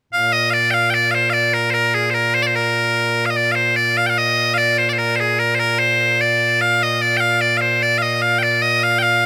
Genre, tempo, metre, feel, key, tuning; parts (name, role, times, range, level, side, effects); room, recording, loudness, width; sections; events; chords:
scottish traditional, Scottish pipe music; 74 BPM; 2/4; straight; Bb mixolydian; A4 = 440 Hz
loud bright bagpipes; solo; 0.1-9.3 s; Bb2 to G5; -17 LUFS; equal
light reverb; -17 LUFS; mono
0.1-9.3 A section